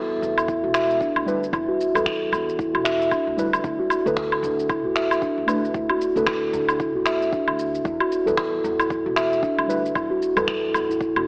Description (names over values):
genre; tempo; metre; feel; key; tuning
organic downtempo; 114 BPM; 4/4; swing 59% on 16ths; unclear; A4 = 440 Hz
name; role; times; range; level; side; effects
steel tongue drum; arpeggios; 0.0-11.3 s; D4 to E5; -22 LUFS; equal; low-pass filter, tape echo
upright bass; bass; 0.0-11.3 s; E1 to E2; -36 LUFS; equal; sidechain pumping
bronze singing bowl; texture; 0.0-11.3 s; E5; -34 LUFS; equal; none
electronic shaker, woodblock and finger snaps; drums; 0.2-11.2 s; none; -26 LUFS; equal; overdrive
udu; percussion; 0.2-10.9 s; none; -51 LUFS; equal; none
electronic kick drum; drums; 0.5-11.1 s; none; -32 LUFS; equal; overdrive
muted felt-like synth keys; accompaniment; 1.3-10.5 s; G3 to B4; -30 LUFS; equal; chorus, sidechain pumping, tape echo
room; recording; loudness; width
wet echo chamber reverb, RT60 1.7 s, small room ambience; worn, warbling old tape, cassette tape, warbly pitch drift, AM radio sound; -20 LUFS; side -34 dB against mid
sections
0.0-11.3 A section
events
filter sweep on steel tongue drum 0.0-11.3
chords
0.0 N.C.; 3.6 Bm7 (rootless); 7.9 N.C.